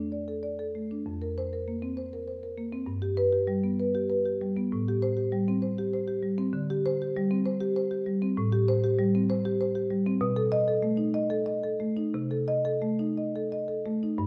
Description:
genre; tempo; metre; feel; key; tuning
classical, contemporary piece for solo marimba; 65 BPM (dotted quarters); 6/8; rubato; unclear; A4 = 437 Hz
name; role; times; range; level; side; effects
marimba with soft mallets; solo; 0.0-14.3 s; F2 to D#5; -29 LUFS; equal; none
room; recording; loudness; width
wet stone room reverb, RT60 1.3 s; none; -29 LUFS; mono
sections
0.0-14.2 A section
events
none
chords
0.0 F6; 1.1 C7sus4/F; 2.9 G; 4.7 Am7; 6.6 D7sus4; 8.4 Am7; 10.2 B7; 12.2 Cm6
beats
0.12 | 1.06 1.98 | 2.88 3.80 | 4.73 5.64 | 6.55 7.47 | 8.39 9.30 | 10.22 11.16 | 12.16 13.18 | 14.19

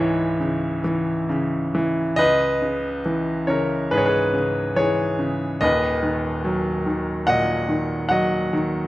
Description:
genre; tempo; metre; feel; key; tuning
classical, lyrical solo piano; 70 BPM; 4/4; rubato; C# dorian; A4 = 439 Hz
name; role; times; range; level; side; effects
bright grand piano; solo; 0.0-8.9 s; D#1 to F#5; -19 LUFS; equal; none
room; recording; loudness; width
light reverb; close, detailed microphones; -19 LUFS; side -16 dB against mid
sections
0.0-2.2 A section; 2.2-8.9 B section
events
none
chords
0.0 C#m; 2.2 C#m7; 5.6 Bmaj7/D#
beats
0.40 1.29 | 2.18 3.06 3.92 4.77 | 5.61 6.45 7.28 8.12

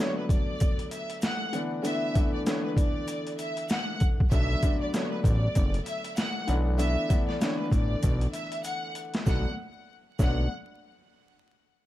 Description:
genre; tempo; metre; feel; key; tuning
hip hop, boom-bap hip-hop; 97 BPM; 4/4; swing 59% on 16ths; B minor; A4 = 442 Hz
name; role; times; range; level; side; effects
rich studio violin section; melody; 0.0-10.5 s; B4 to F#5; -34 LUFS; equal; high-pass filter, low-pass filter
dark upright piano; accompaniment; 0.0-10.4 s; D3 to D4; -32 LUFS; left 2 dB; high-pass filter, low-pass filter
boom bap sampler-style drum kit; drums; 0.3-10.4 s; hi-hat, kick drum, snare drum; -27 LUFS; equal; overdrive
tube shaker; percussion; 0.3-10.5 s; none; -49 LUFS; right 7 dB; none
fat analog bass; bass; 4.3-10.5 s; F#1 to B1; -26 LUFS; equal; none
room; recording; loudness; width
studio reverb; dark, warm production, vinyl crackle; -25 LUFS; side -14 dB against mid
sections
0.0-9.3 A section; 9.3-11.7 B section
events
break 0.0-4.3; drum fill 8.6-9.3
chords
0.0 Bm7; 1.5 E7sus4; 4.3 Bm7; 6.5 E7sus4; 9.3 Bm7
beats
0.61 1.23 | 1.84 2.46 3.08 3.70 | 4.32 4.94 5.55 6.17 | 6.79 7.41 8.03 8.65 | 9.27 9.88

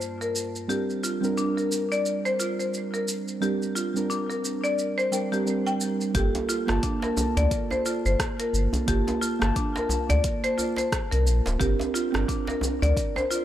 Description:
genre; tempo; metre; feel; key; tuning
organic downtempo; 88 BPM; 4/4; swing 59% on 16ths; G minor; A4 = 438 Hz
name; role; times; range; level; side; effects
muted felt-like synth keys; accompaniment; 0.0-13.4 s; G2 to A5; -28 LUFS; right 3 dB; chorus, sidechain pumping, tape echo
deep house drum kit; drums; 0.0-13.4 s; hi-hat, rim click, shaker; -32 LUFS; right 1 dB; none
marimba with hard mallets; arpeggios; 0.2-13.4 s; D4 to G5; -28 LUFS; left 2 dB; low-pass filter, tape echo
warm sub bass; bass; 6.1-12.9 s; D1 to D2; -23 LUFS; equal; sidechain pumping
electronic kick drum; drums; 6.1-13.1 s; none; -30 LUFS; equal; none
djembe; percussion; 6.3-13.3 s; none; -32 LUFS; equal; none
room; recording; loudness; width
light reverb, digital ambience; dry, gritty hardware recording; -23 LUFS; side -12 dB against mid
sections
0.0-6.1 A section; 6.1-13.4 B section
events
filter sweep on marimba 0.0-6.1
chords
0.0 Gm7; 0.7 Bbadd9/G; 6.1 Gm7; 11.6 Bbadd9/G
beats
0.01 | 0.69 1.38 2.06 2.74 | 3.42 4.10 4.79 5.47 | 6.15 6.83 7.51 8.19 | 8.88 9.56 10.24 10.92 | 11.60 12.29 12.97

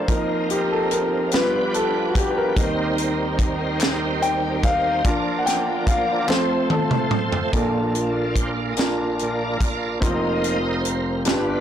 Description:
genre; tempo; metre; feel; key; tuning
slow gospel; 48 BPM (dotted quarters); 6/8; straight; Bb major; A4 = 440 Hz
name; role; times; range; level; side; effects
clear concert grand piano; accompaniment; 0.0-11.6 s; F1 to G5; -22 LUFS; left 1 dB; none
bright tonewheel organ; sustained chords; 0.0-11.6 s; Eb2 to Eb5; -25 LUFS; right 3 dB; fast rotary speaker, overdrive, chorus vibrato
warm studio string section; sustained chords; 0.0-7.5 s; Eb3 to B4; -32 LUFS; left 2 dB; none
tight funk drum kit; drums; 0.1-11.5 s; hi-hat, kick drum, snare drum, toms; -23 LUFS; equal; none
group handclap; percussion; 3.8-6.7 s; none; -31 LUFS; left 4 dB; none
room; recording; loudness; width
light reverb; blown-out, overdriven recording, overdrive; -19 LUFS; side -10 dB against mid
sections
0.0-7.5 A section; 7.5-11.6 B section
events
grand piano solo 0.0-7.5; drum fill 6.3-7.5; tonewheel organ solo 7.5-11.6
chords
0.1 F7sus4; 1.3 G7; 2.6 Cm7/Eb; 5.0 Bb/F; 6.3 F; 7.5 Bbmaj7; 10.0 F7sus4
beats
| 0.09 1.33 | 2.57 3.81 | 5.05 6.29 | 7.53 8.77 | 10.02 11.26

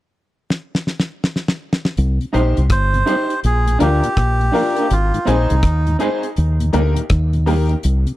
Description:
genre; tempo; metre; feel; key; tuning
roots reggae; 82 BPM; 4/4; swing 64% on 16ths; C minor; A4 = 440 Hz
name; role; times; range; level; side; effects
damped 70s drum kit; drums; 0.5-8.2 s; hi-hat, kick drum, rim click, snare drum; -20 LUFS; equal; none
fingered electric bass; bass; 2.0-8.0 s; G1 to Eb2; -16 LUFS; equal; none
mellow tonewheel organ; accompaniment; 2.2-8.1 s; Eb2 to Eb4; -25 LUFS; left 1 dB; chorus vibrato, slow rotary speaker
electric guitar at the edge of break-up; accompaniment; 2.3-7.7 s; Bb3 to C5; -23 LUFS; right 3 dB; tremolo, dub echo
bright upright piano; stabs; 2.3-7.7 s; D4 to C5; -23 LUFS; left 5 dB; none
melodica; melody; 2.7-6.0 s; Eb4 to C5; -21 LUFS; right 1 dB; dub echo
room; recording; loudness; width
studio reverb; dry, close 1970s-style studio recording; -15 LUFS; side -16 dB against mid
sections
0.0-2.0 A section; 2.0-8.2 B section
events
drum fill 0.5-2.0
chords
0.0 N.C.; 2.0 Cm; 3.4 Bb; 4.9 Ab; 6.4 Eb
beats
0.50 1.23 | 1.97 2.70 3.43 4.17 | 4.90 5.63 6.37 7.10 | 7.83

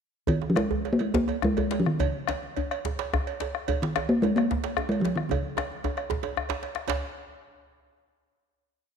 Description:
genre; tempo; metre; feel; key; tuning
west african traditional, West African drum ensemble; 139-164 BPM (dotted quarters); 12/8; straight; Db major pentatonic; A4 = 440 Hz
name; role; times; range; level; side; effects
talking drum; melody; 0.3-6.1 s; Db3 to Bb3; -25 LUFS; left 1 dB; none
bombo; percussion; 0.3-7.0 s; none; -33 LUFS; left 3 dB; none
cowbell; percussion; 0.3-7.0 s; none; -36 LUFS; right 12 dB; none
djembe; percussion; 0.3-7.0 s; none; -34 LUFS; left 4 dB; none
djembe; percussion; 0.3-7.0 s; none; -33 LUFS; right 5 dB; none
room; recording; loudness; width
moderate echo chamber reverb, RT60 2.0 s, small room ambience; 1960s-style stereo; -25 LUFS; side -7 dB against mid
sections
0.3-6.9 A section; 6.9-8.4 final hit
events
speeding up 0.3-8.4; drum fill 5.3-6.9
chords
none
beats
| 0.28 0.71 1.15 1.57 | 2.00 2.42 2.85 3.27 | 3.68 4.10 4.51 4.91 | 5.31 5.71 6.11 6.50 | 6.88

